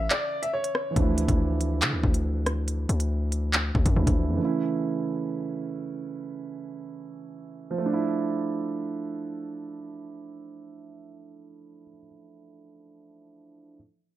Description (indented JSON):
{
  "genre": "hip hop, drill",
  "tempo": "140 BPM",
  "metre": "4/4",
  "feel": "half-time",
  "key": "D harmonic minor",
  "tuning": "A4 = 440 Hz",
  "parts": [
    { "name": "warm upright piano", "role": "melody", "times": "0.0-0.9 s", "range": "C#5 to E5", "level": "-30 LUFS", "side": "left 1 dB", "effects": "ping-pong delay" },
    { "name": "dark baby grand piano", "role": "accompaniment", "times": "0.0-13.8 s", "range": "C#3 to E4", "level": "-30 LUFS", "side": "right 4 dB", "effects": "low-pass filter" },
    { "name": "distorted 808-style bass", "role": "bass", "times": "0.0-4.4 s", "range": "D2 to D3", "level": "-26 LUFS", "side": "left 1 dB", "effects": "distortion" },
    { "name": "drill drum kit", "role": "drums", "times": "0.1-4.2 s", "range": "handclaps, hi-hat, kick drum, rim click", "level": "-25 LUFS", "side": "left 1 dB", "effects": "none" }
  ],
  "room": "small room ambience",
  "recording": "none",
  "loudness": "-24 LUFS",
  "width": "side -14 dB against mid",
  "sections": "1.0-7.8 A section; 7.8-11.2 B section",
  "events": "kick muted 0.1-1.0; filter sweep on grand piano 1.0-7.8",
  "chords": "0.0 A (rootless); 1.0 Dmadd9; 4.4 A; 7.8 Dmadd9",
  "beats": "0.11 0.53 | 0.96 1.39 1.82 2.25 | 2.68 3.11 3.53 3.96 | 4.39 4.82 5.25 5.68 | 6.11 6.53 6.96 7.39 | 7.82 8.25 8.68 9.11 | 9.53 9.96 10.39 10.82"
}